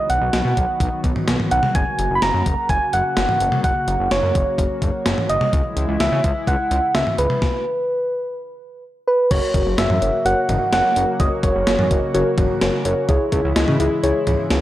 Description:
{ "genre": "synth-pop", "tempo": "127 BPM", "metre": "4/4", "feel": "straight", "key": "unclear", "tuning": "A4 = 440 Hz", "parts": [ { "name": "soft struck synth lead", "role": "melody", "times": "0.0-12.8 s", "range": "B4 to B5", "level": "-20 LUFS", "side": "right 1 dB", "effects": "chorus" }, { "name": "chorused pulse-width pad", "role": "sustained chords", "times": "0.0-14.6 s", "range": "C#3 to F#4", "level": "-28 LUFS", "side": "left 1 dB", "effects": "none" }, { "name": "chorused synth bass", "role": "bass", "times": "0.1-14.6 s", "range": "F#1 to C#3", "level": "-22 LUFS", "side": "equal", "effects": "none" }, { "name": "gated 80s digital drum machine", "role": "drums", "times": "0.1-14.6 s", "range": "crash cymbal, hi-hat, kick drum, snare drum, toms", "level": "-21 LUFS", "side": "equal", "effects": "gated reverb, gated reverb snare" }, { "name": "muted felt-like synth keys", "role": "accompaniment", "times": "9.3-14.6 s", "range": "E4 to E5", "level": "-21 LUFS", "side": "left 1 dB", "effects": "chorus" } ], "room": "light reverb", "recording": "dry, gritty hardware recording", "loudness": "-16 LUFS", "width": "side -14 dB against mid", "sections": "0.0-9.3 A section; 9.3-14.6 B section", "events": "stop 7.4-9.3", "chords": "0.0 B; 1.8 F#; 5.5 C#m; 7.4 N.C.; 9.3 F#; 13.1 C#m" }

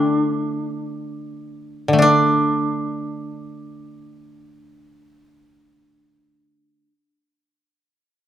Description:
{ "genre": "japanese traditional", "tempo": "free time", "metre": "none", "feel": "none", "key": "unclear", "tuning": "A4 = 443 Hz", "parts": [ { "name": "koto", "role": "melody", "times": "0.0-6.9 s", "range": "C4 to E4", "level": "-21 LUFS", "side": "right 1 dB", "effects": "none" }, { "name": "koto", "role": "accompaniment", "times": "0.0-6.9 s", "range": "D3 to D4", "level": "-21 LUFS", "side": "left 1 dB", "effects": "none" } ], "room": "moderate recital hall reverb, RT60 1.4 s", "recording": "close, detailed microphones", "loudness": "-17 LUFS", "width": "side -11 dB against mid", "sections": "0.0-2.0 A section; 2.0-8.0 B section", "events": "slowing down 0.0-2.0", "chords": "none" }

